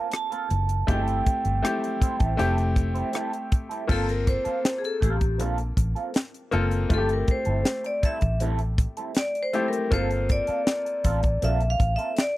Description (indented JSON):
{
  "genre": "lush 1970s-style soul",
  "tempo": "80 BPM",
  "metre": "4/4",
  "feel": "straight",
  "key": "G dorian",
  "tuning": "A4 = 439 Hz",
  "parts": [
    { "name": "vibraphone with hard mallets", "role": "melody", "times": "0.0-12.4 s", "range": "G4 to A5", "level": "-28 LUFS", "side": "equal", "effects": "none" },
    { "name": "bright grand piano", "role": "accompaniment", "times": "0.0-12.4 s", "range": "A3 to A4", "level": "-31 LUFS", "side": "left 3 dB", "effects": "none" },
    { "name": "mellow electric guitar", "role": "riff", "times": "0.0-12.2 s", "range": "G3 to C5", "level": "-33 LUFS", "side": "right 4 dB", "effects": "wah, vibrato effect" },
    { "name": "tight funk drum kit", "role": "drums", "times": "0.1-12.4 s", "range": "crash cymbal, hi-hat, kick drum, rim click, snare drum", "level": "-24 LUFS", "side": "equal", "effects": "none" },
    { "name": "vintage muted fingered electric bass", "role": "bass", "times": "0.5-12.0 s", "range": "F1 to Bb1", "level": "-26 LUFS", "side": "equal", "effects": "none" }
  ],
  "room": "small room ambience",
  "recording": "dry, close 1970s-style studio recording",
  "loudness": "-22 LUFS",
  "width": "side -17 dB against mid",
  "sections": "0.0-3.9 A section; 3.9-12.4 B section",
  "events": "vibraphone solo 3.9-12.4",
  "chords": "0.0 Gm11 (rootless); 0.9 Am7/G; 2.4 Fmaj9; 3.9 Gm11; 6.9 Am7/G; 9.9 Gm11",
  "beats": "0.13 | 0.88 1.63 2.38 3.14 | 3.89 4.64 5.39 6.15 | 6.90 7.66 8.41 9.16 | 9.91 10.67 11.42 12.18"
}